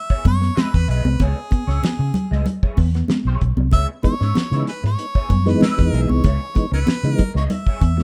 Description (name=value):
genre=funk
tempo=95 BPM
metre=4/4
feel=straight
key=C# minor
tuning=A4 = 440 Hz
part: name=clear harmonica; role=melody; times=0.0-8.0 s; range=G#4 to E5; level=-31 LUFS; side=equal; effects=none
part: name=clean electric guitar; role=accompaniment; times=0.1-8.0 s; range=B3 to D#5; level=-34 LUFS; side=equal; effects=wah, ensemble chorus
part: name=damped 70s drum kit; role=drums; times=0.1-8.0 s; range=hi-hat, kick drum, snare drum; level=-22 LUFS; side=equal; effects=vintage 12-bit sampler grit
part: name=electric guitar at the edge of break-up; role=riff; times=0.3-8.0 s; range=F#3 to C#4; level=-32 LUFS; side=equal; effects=subtle chorus
part: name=vintage muted fingered electric bass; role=bass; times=0.3-8.0 s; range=B1 to C#3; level=-21 LUFS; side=equal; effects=none
part: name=congas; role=percussion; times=0.3-8.0 s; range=none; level=-27 LUFS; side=equal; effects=none
part: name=mellow tonewheel organ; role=stabs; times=4.0-8.0 s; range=E3 to E4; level=-24 LUFS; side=equal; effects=chorus vibrato, slow rotary speaker
room=studio reverb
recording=rough home demo mix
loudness=-19 LUFS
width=mono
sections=0.0-8.0 A section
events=none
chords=0.0 C#m7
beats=0.57 | 1.20 1.83 2.46 3.09 | 3.72 4.35 4.98 5.61 | 6.24 6.87 7.50